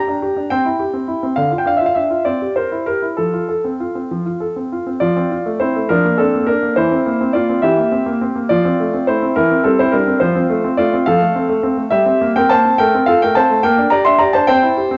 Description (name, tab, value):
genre	classical-period piano sonatina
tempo	70 BPM (dotted quarters)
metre	6/8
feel	rubato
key	F major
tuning	A4 = 440 Hz
part	clear grand piano	solo	0.0-15.0 s	D3 to C6	-16 LUFS	equal	none
room	moderate recital hall reverb, RT60 1.8 s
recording	worn, warbling old tape, cassette tape, warbly pitch drift, nothing above 7.8 kHz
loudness	-16 LUFS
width	mono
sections	0.0-5.0 A section; 5.0-15.0 A section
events	none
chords	0.0 Gm; 0.5 C; 1.4 Dmadd9; 2.3 C7; 3.2 F; 5.9 Bb/F; 6.8 C7/E; 8.5 F; 9.4 C/E; 10.2 F; 11.9 C7/G; 12.8 F/A; 13.6 Gm/Bb